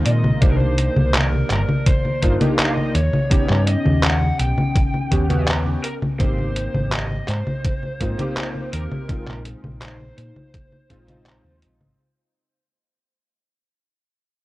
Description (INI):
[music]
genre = vaporwave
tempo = 83 BPM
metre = 4/4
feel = straight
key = unclear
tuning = A4 = 440 Hz
[part]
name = warm electric grand piano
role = accompaniment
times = 0.0-12.0 s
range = Ab3 to G4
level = -27 LUFS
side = equal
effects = ensemble chorus
[part]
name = warbly tape-like pad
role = sustained chords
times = 0.0-12.0 s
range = C3 to Eb5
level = -31 LUFS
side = left 2 dB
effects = chorus, built-in reverb, phaser
[part]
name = lead guitar through a small cranked amp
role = melody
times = 0.1-11.6 s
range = Bb4 to G5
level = -28 LUFS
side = equal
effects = overdrive, tape echo
[part]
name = hollow-body short-scale fingered electric bass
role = bass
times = 0.1-11.9 s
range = G1 to Bb2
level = -21 LUFS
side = equal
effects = none
[part]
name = detuned 8-bit digital drum machine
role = drums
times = 0.1-11.9 s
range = congas, handclaps, hi-hat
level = -22 LUFS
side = equal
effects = none
[part]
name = electronic kick drum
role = drums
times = 0.4-11.0 s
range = none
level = -19 LUFS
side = equal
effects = none
[sound]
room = little or no reverb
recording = dry, gritty hardware recording, cassette tape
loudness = -17 LUFS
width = side -18 dB against mid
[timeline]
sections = 0.0-12.0 A section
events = fade-out 4.3-12.0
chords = 0.4 Cm9; 2.9 Eb7alt; 5.8 Abmaj7; 9.1 Bb9sus4